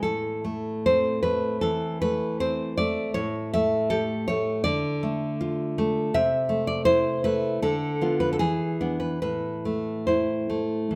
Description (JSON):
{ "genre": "romantic piece for solo classical guitar", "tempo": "79 BPM", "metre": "4/4", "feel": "uneven beats, rubato", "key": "A minor", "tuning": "A4 = 440 Hz", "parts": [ { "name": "nylon-string guitar", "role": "solo", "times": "0.0-11.0 s", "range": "A2 to E5", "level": "-26 LUFS", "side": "equal", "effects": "none" } ], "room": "moderate recital hall reverb, RT60 1.4 s", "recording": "close, detailed microphones", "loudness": "-26 LUFS", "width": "mono", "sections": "0.0-11.0 A section", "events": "none", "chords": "0.0 Am; 3.2 A7; 4.7 Dm; 6.2 Am/C; 7.6 Bm7b5/D; 8.4 E7; 9.2 Am" }